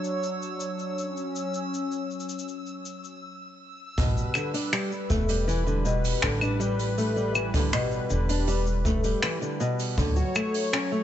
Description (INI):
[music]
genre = folktronica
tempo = 80 BPM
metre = 4/4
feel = straight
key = unclear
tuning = A4 = 439 Hz
[part]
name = warm analog pad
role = sustained chords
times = 0.0-11.0 s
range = F#3 to C#5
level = -32 LUFS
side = left 1 dB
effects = chorus
[part]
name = jazz brush drum kit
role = drums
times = 0.0-11.0 s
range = claves, finger snaps, hi-hat, shaker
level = -31 LUFS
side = left 1 dB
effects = none
[part]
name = backwards swelling texture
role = texture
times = 0.0-3.2 s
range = E6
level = -40 LUFS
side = right 2 dB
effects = built-in reverb
[part]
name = fingerpicked old ladder-braced acoustic guitar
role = arpeggios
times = 4.0-11.0 s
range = B2 to F#4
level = -28 LUFS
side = left 1 dB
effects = digital delay
[part]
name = upright bass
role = bass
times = 4.0-10.2 s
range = E1 to D2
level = -28 LUFS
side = equal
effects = none
[part]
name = kick drum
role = drums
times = 4.0-10.1 s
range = none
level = -28 LUFS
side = equal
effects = none
[sound]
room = light reverb, studio reverb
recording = nothing above 8.0 kHz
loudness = -24 LUFS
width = side -11 dB against mid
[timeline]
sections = 0.0-4.0 A section; 4.0-11.0 B section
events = stop 3.2-4.0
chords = 0.0 Dmaj7; 4.0 A9sus4; 10.0 Dmaj7